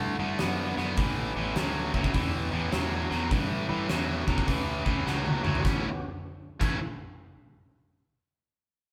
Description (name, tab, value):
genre	blues rock power trio and southern rock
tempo	103 BPM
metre	4/4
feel	swing 65% on 8ths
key	A mixolydian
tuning	A4 = 440 Hz
part	tonewheel organ	sustained chords	0.0-6.1 s	B3 to B4	-42 LUFS	equal	slow rotary speaker, overdrive
part	tight distorted guitar	riff	0.0-6.8 s	A2 to E4	-32 LUFS	equal	distortion
part	growling fingered electric bass	bass	0.0-6.8 s	A1 to G2	-37 LUFS	equal	overdrive
part	huge arena drum kit	drums	0.4-6.7 s	crash cymbal, hi-hat, kick drum, snare drum, toms	-33 LUFS	equal	none
room	moderate stone room reverb, RT60 1.2 s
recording	band playing live in one room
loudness	-29 LUFS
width	mono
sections	0.0-5.6 A section; 5.6-8.0 B section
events	drum fill 5.1-5.6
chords	0.0 D7; 1.0 A7; 5.6 A13